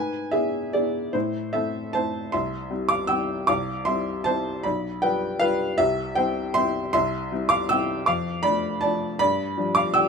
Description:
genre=classical, piano waltz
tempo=144-170 BPM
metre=3/4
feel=rubato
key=C major from 6.9 s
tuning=A4 = 436 Hz
part: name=warm upright piano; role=solo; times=0.0-10.1 s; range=B1 to E6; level=-22 LUFS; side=equal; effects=none
room=light reverb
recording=close, detailed microphones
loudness=-22 LUFS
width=side -5 dB against mid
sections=0.0-10.1 A section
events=none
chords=0.0 E7/G#; 1.1 Am; 2.3 C; 4.7 G7/B; 5.8 C; 8.1 Dm/F; 9.2 G7

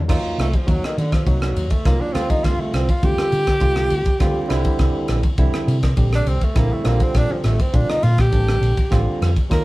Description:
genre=electric jazz fusion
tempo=102 BPM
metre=4/4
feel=straight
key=Bb major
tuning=A4 = 440 Hz
part: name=barky tine electric piano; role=accompaniment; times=0.1-9.6 s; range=D3 to G4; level=-25 LUFS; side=right 2 dB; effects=medium stereo tremolo
part: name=hollow-body short-scale fingered electric bass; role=bass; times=0.1-9.6 s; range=A1 to Eb3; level=-20 LUFS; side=equal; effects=none
part: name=tight funk drum kit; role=drums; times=0.1-9.6 s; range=crash cymbal, kick drum, ride cymbal, rim click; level=-20 LUFS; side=equal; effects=none
part: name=breathy tenor saxophone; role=melody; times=0.4-9.6 s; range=D3 to Bb4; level=-23 LUFS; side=equal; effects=none
room=moderate studio reverb, RT60 0.5 s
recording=band playing live in one room, vinyl crackle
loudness=-16 LUFS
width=side -19 dB against mid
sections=0.1-9.6 A section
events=tenor saxophone solo 0.1-9.6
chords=0.1 Ebmadd9; 2.1 Dm7; 4.5 C9; 6.9 Bbmaj7

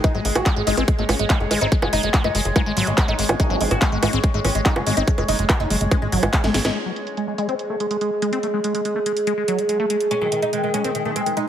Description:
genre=psychedelic trance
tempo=143 BPM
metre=4/4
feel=straight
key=unclear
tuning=A4 = 443 Hz
part: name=oud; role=melody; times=0.0-6.7, 10.1-11.4 s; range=D#3 to F#4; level=-25 LUFS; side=left 1 dB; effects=phaser, sidechain pumping, ping-pong delay
part: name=overtone-sweeping drone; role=sustained chords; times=0.0-11.5 s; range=G#3 to C#5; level=-25 LUFS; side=right 1 dB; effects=chorus, built-in reverb, sidechain pumping
part: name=liquid acid bass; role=riff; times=0.0-11.5 s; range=F#3 to B#3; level=-26 LUFS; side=moving between left 4 dB and right 3 dB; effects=phaser, auto-pan, sidechain pumping, dub echo
part: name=drum and bass drum kit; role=drums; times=0.0-11.5 s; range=bongos, handclaps, hi-hat, snare drum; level=-24 LUFS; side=right 1 dB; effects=overdrive, low-pass filter on hats, low-pass filter on perc, low-pass filter on snare
part: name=electronic kick drum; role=drums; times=0.0-6.4 s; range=none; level=-19 LUFS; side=equal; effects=overdrive
part: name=plucky analog bass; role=bass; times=0.1-6.7 s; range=F#1 to G#1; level=-24 LUFS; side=equal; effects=none
part: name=zap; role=sound effects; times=3.3-3.4 s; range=none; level=-28 LUFS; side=equal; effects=none
room=moderate plate reverb, RT60 1.5 s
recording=heavily compressed radio sound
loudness=-18 LUFS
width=side -10 dB against mid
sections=0.0-6.8 A section; 6.8-11.5 B section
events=drop 0.0-6.8; drum fill 6.4-6.8; band accent 6.6; filter sweep on drum 6.8-11.5; filter sweep on acid bass 6.8-11.5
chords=0.0 G#5

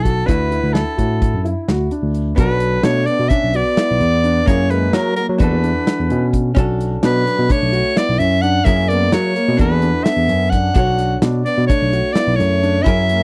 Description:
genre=progressive instrumental, band music in an uneven meter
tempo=258 BPM (eighths)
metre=9/8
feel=straight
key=unclear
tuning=A4 = 440 Hz
part: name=breathy soprano saxophone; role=melody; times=0.0-13.2 s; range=A4 to F#5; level=-22 LUFS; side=equal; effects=slapback echo
part: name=hollow-body jazz guitar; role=accompaniment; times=0.0-13.2 s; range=A#3 to C#5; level=-30 LUFS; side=equal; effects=none
part: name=dark grand piano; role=arpeggios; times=0.0-13.2 s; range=A#3 to F#4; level=-26 LUFS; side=equal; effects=none
part: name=overdriven tine electric piano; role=bass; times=0.0-13.2 s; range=B1 to F#3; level=-20 LUFS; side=equal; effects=none
part: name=modern studio drum kit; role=drums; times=0.1-13.2 s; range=hi-hat, kick drum, snare drum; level=-20 LUFS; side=equal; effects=none
part: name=mellow trombone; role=second line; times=2.4-13.2 s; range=E3 to D4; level=-28 LUFS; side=equal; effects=none
room=small room ambience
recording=dry, close 1970s-style studio recording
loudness=-16 LUFS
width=mono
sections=0.0-2.4 A section; 2.4-13.2 B section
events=none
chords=0.3 Dadd9; 2.4 Bm7; 4.5 F#7; 5.4 E7sus4; 6.6 Bm9; 8.7 F#7; 9.6 E7sus4; 10.8 Bm9

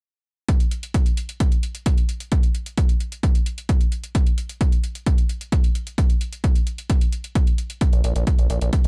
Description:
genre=driving peak-time techno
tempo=131 BPM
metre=4/4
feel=straight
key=unclear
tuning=A4 = 440 Hz
part: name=electronic hi-hat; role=drums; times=0.5-8.9 s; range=none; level=-38 LUFS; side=equal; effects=sidechain pumping on hats
part: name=electronic kick drum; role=drums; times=0.5-8.8 s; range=none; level=-21 LUFS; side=equal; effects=none
part: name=gritty driven synth bass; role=bass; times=7.9-8.9 s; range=Bb1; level=-24 LUFS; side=equal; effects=distortion, sidechain pumping
room=little or no reverb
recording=dark, warm production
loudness=-21 LUFS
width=mono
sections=0.5-8.9 A section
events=none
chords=none

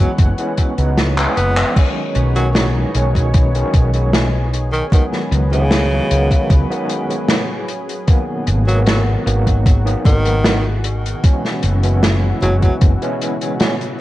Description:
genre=vaporwave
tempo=76 BPM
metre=4/4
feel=straight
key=B major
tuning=A4 = 440 Hz
part: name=clear tenor saxophone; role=melody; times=0.0-12.8 s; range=C#3 to B3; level=-24 LUFS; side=equal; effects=tape echo
part: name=overdriven tine electric piano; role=accompaniment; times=0.0-13.7 s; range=D#3 to D#4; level=-22 LUFS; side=equal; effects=medium tremolo, wide subtle chorus, tape echo
part: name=lush unison pad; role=sustained chords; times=0.0-14.0 s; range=B2 to F#5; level=-27 LUFS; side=left 1 dB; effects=chorus, vintage 12-bit sampler grit
part: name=woody fretless electric bass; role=bass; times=0.0-12.9 s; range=F#1 to C#2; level=-16 LUFS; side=equal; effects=wide subtle chorus
part: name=electronic kick drum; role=drums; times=0.2-13.0 s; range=none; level=-12 LUFS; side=equal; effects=vintage 12-bit sampler grit
part: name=open jazz drum kit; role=drums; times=0.2-14.0 s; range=crash cymbal, handclaps, hi-hat, snare drum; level=-19 LUFS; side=equal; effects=vintage 12-bit sampler grit, gated reverb
room=light reverb, small room ambience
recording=cassette tape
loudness=-13 LUFS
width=side -16 dB against mid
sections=0.0-1.8 A section; 1.8-14.0 B section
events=drum fill 1.2-1.8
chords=0.0 F#7sus4; 1.8 B69; 4.9 C#7sus4; 8.1 G#m7; 11.2 F#7sus4

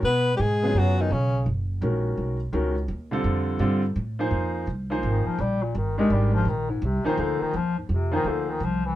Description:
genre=jazz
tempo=168 BPM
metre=3/4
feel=swing 65% on 8ths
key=Bb mixolydian from 4.3 s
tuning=A4 = 441 Hz
part: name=breathy tenor saxophone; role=melody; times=0.0-1.5 s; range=Db4 to Cb5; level=-24 LUFS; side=left 2 dB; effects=none
part: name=breathy bass clarinet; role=second line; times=0.0-1.5, 5.1-9.0 s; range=Ab2 to Cb4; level=-27 LUFS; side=left 3 dB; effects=none
part: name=upright bass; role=bass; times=0.0-8.9 s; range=Gb1 to Cb3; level=-25 LUFS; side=right 1 dB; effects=none
part: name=clear concert grand piano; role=accompaniment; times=0.6-8.6 s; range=Db3 to C5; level=-27 LUFS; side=right 1 dB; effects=none
room=light reverb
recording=band playing live in one room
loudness=-22 LUFS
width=side -14 dB against mid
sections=0.0-4.3 A section; 4.3-9.0 B section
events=bass clarinet solo 4.3-9.0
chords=0.0 Cbmaj9; 3.2 F69; 4.3 Bb9sus4

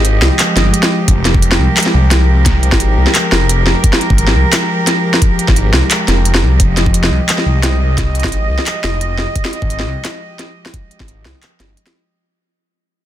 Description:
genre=half-time drum and bass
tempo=174 BPM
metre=4/4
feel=swing 54% on 16ths, half-time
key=F minor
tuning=A4 = 439 Hz
part: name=rich symphonic cello section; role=sustained chords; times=0.0-12.1 s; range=F3 to Eb5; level=-18 LUFS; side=right 1 dB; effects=sidechain pumping
part: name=phased detuned saw bass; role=bass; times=0.0-11.8 s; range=F1 to C2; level=-13 LUFS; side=equal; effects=phaser
part: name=industrial drum kit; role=drums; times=0.0-11.9 s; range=handclaps, hi-hat, snare drum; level=-15 LUFS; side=equal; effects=none
part: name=electronic kick drum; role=drums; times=1.1-11.1 s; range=none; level=-14 LUFS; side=equal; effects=none
room=little or no reverb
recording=dense, heavily limited modern master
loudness=-10 LUFS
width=side -12 dB against mid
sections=0.0-12.1 A section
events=break 0.0-1.1; drop 0.0-12.1; fade-out 6.6-12.1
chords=0.0 Fmadd9

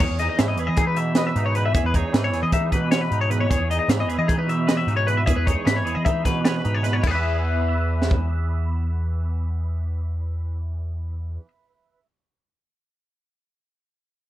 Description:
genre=math rock and midwest emo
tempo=307 BPM (eighths)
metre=9/8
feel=straight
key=E major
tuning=A4 = 440 Hz
part: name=twangy electric guitar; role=accompaniment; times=0.0-12.1 s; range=E2 to E5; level=-28 LUFS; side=right 6 dB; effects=ensemble chorus
part: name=twelve-string electric guitar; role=arpeggios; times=0.0-11.5 s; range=E4 to E5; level=-25 LUFS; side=left 5 dB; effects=lush chorus
part: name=fingered electric bass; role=bass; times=0.0-11.4 s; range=E2 to E3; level=-24 LUFS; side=equal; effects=none
part: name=crisp fusion drum kit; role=drums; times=0.0-8.2 s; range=crash cymbal, hi-hat, kick drum, snare drum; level=-23 LUFS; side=right 1 dB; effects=none
room=little or no reverb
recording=none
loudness=-20 LUFS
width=side -13 dB against mid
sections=0.0-7.0 A section; 7.0-10.6 B section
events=none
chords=0.0 Emaj7; 7.0 E

